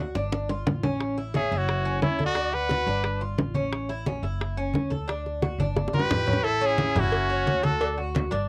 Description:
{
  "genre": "latin, Cuban son and guajira",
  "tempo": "176 BPM",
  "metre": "4/4",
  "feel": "straight",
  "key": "A major",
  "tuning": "A4 = 441 Hz",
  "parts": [
    { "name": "Cuban tres", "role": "arpeggios", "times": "0.0-8.5 s", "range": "C#4 to C#5", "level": "-34 LUFS", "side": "equal", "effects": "cassette tape" },
    { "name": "upright bass", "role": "bass", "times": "0.0-8.5 s", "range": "F#1 to D2", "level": "-34 LUFS", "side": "equal", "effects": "none" },
    { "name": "bongos and cowbell", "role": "percussion", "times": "0.1-8.5 s", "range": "none", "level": "-33 LUFS", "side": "equal", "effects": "none" },
    { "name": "congas", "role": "percussion", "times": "0.2-8.5 s", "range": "none", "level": "-31 LUFS", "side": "equal", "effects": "none" },
    { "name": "bright silver concert flute", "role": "second line", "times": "1.3-3.0, 5.9-8.0 s", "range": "C#4 to F#5", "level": "-35 LUFS", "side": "equal", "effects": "cassette tape" },
    { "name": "brilliant trumpet", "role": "melody", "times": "1.4-3.2, 5.9-8.0 s", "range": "E4 to B4", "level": "-29 LUFS", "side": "equal", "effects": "none" }
  ],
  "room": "light reverb",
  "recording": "home recording on cassette",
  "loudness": "-26 LUFS",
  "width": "mono",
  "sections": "0.0-6.4 A section; 6.4-8.5 B section",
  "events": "drum fill 0.0-1.0, 5.6-6.4",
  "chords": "0.3 G5; 1.0 A; 1.7 F#m7; 2.4 D; 3.0 G5; 3.7 A; 4.4 F#m7; 5.1 D; 5.8 G7; 6.4 A; 7.1 F#m7; 7.8 D"
}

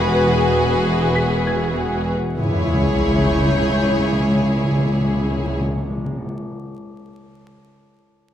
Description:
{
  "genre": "cinematic, suspense film score",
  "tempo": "98 BPM",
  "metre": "4/4",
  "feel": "straight",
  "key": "C# minor",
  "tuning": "A4 = 440 Hz",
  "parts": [
    { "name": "warm chamber violin section", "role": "melody", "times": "0.0-5.6 s", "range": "B4 to C#5", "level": "-26 LUFS", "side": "left 2 dB", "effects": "none" },
    { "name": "rich studio violin section", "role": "second line", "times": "0.0-5.6 s", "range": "G#4", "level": "-26 LUFS", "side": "left 1 dB", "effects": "none" },
    { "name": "rich chamber viola section", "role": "accompaniment", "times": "0.0-5.6 s", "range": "E4 to F#4", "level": "-25 LUFS", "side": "equal", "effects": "none" },
    { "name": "warbly tape-like pad", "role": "sustained chords", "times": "0.0-5.6 s", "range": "G#4 to F#5", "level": "-28 LUFS", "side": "left 1 dB", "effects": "chorus, built-in reverb" },
    { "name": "clear chamber double bass section", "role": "bass", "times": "0.0-5.6 s", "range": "E1 to C#2", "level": "-25 LUFS", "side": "right 1 dB", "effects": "none" },
    { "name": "warm chamber cello section", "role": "bass", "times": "0.0-5.6 s", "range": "C#2 to E2", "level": "-24 LUFS", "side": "equal", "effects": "none" },
    { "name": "organ-like drone", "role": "drone", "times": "0.0-5.6 s", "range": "C#2 to E2", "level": "-27 LUFS", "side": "equal", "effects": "ensemble chorus, built-in reverb" },
    { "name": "rich studio violin section", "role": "texture", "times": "0.0-4.5 s", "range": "G#5 to G6", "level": "-33 LUFS", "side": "left 3 dB", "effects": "none" },
    { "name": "warm grand piano", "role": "texture", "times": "1.2-2.4 s", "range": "G#6 to B6", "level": "-30 LUFS", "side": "left 3 dB", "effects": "none" },
    { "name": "timpani", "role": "percussion", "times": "2.4-6.3 s", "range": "C#3", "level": "-23 LUFS", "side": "equal", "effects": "none" },
    { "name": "sub drop", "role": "sound effects", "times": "2.4-6.3 s", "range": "none", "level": "-26 LUFS", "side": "equal", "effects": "none" }
  ],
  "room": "wet scoring stage reverb, RT60 1.8 s",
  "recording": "vinyl crackle",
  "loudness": "-16 LUFS",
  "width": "side -10 dB against mid",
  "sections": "0.0-2.4 A section; 2.4-4.8 B section",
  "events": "impact 2.4-4.8",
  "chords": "0.0 Eadd9; 2.4 C#m"
}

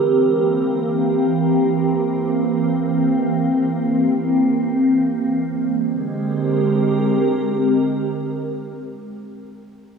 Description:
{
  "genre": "ambient",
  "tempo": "free time",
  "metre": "none",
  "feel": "none",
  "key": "Bb mixolydian",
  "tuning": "A4 = 441 Hz",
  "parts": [
    { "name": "glassy FM pad", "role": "sustained chords", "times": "0.0-9.0 s", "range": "D3 to Bb4", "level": "-17 LUFS", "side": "right 1 dB", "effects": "ensemble chorus, built-in reverb, phaser" }
  ],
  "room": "wet plate reverb, RT60 3.1 s",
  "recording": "small room reverb",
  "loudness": "-17 LUFS",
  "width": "side -6 dB against mid",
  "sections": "0.0-5.4 A section; 5.4-8.6 B section",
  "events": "filter sweep on ambient pad 0.0-5.4",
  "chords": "0.0 C7; 5.4 Bb13"
}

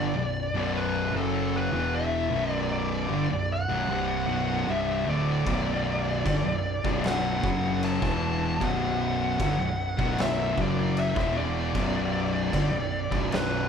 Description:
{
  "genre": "stoner and doom metal",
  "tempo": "76 BPM",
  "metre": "4/4",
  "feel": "straight",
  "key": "B minor",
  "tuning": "A4 = 439 Hz",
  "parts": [
    { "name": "fuzz lead guitar", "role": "melody", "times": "0.0-13.7 s", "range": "A4 to A5", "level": "-30 LUFS", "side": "left 1 dB", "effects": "distortion" },
    { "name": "fuzz guitar", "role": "riff", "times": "0.0-13.7 s", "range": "B1 to F#3", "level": "-33 LUFS", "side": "equal", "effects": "distortion" },
    { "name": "thick fuzz guitar", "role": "riff", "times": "0.0-13.7 s", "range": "B1 to F#3", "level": "-31 LUFS", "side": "left 8 dB", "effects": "distortion" },
    { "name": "thick fuzz guitar", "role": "riff", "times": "0.0-13.7 s", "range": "B1 to F#3", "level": "-31 LUFS", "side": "right 6 dB", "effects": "distortion" },
    { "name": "overdriven picked electric bass", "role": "bass", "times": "0.0-13.7 s", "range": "B0 to G1", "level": "-35 LUFS", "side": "right 1 dB", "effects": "none" },
    { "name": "oversized low-tuned drum kit", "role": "drums", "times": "5.5-13.5 s", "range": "crash cymbal, kick drum, snare drum", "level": "-32 LUFS", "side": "equal", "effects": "none" }
  ],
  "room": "light reverb",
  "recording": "band playing live in one room",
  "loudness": "-24 LUFS",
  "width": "side -7 dB against mid",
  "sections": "0.0-13.7 A section",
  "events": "none",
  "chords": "0.0 Bm"
}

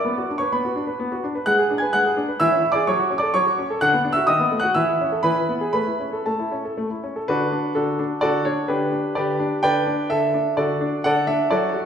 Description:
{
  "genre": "classical-period piano sonatina",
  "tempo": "127 BPM",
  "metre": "3/4",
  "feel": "rubato",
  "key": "A major, D major from 7.3 s",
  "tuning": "A4 = 440 Hz",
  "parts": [
    { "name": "clear baby grand piano", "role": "solo", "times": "0.0-11.9 s", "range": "D3 to G#6", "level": "-19 LUFS", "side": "equal", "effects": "none" }
  ],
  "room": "wet recital hall reverb, RT60 1.5 s",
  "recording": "heard from further back in the room",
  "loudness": "-19 LUFS",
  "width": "side -8 dB against mid",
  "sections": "0.0-7.3 A section; 7.3-11.9 B section",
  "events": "none",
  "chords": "0.1 Bm; 1.5 G#dim; 2.4 C#m/E; 2.9 F#m; 3.8 Bm/D; 4.3 B7/D#; 4.8 A/E; 5.2 E; 5.7 A; 7.3 D; 8.7 G/D; 10.1 D"
}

